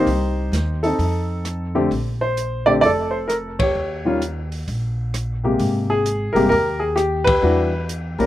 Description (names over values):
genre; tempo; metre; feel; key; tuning
jazz piano trio; 130 BPM; 4/4; swing 66% on 8ths; unclear; A4 = 439 Hz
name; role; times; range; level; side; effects
warm baby grand piano; melody; 0.0-8.3 s; C3 to D5; -18 LUFS; left 1 dB; slapback echo
upright bass; bass; 0.0-8.3 s; F1 to F2; -24 LUFS; equal; none
open jazz drum kit; drums; 0.1-8.3 s; hi-hat, kick drum, ride cymbal, rim click, snare drum; -28 LUFS; equal; none
room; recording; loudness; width
little or no reverb; recorded outdoors, with no room sound; -18 LUFS; side -14 dB against mid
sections
0.0-1.9 A section; 1.9-8.3 A section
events
band accent 3.5, 7.2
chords
0.1 Cm; 1.0 F7; 1.9 Bbmaj7sus2; 3.7 Eb7; 5.6 Abmaj9; 7.4 Em9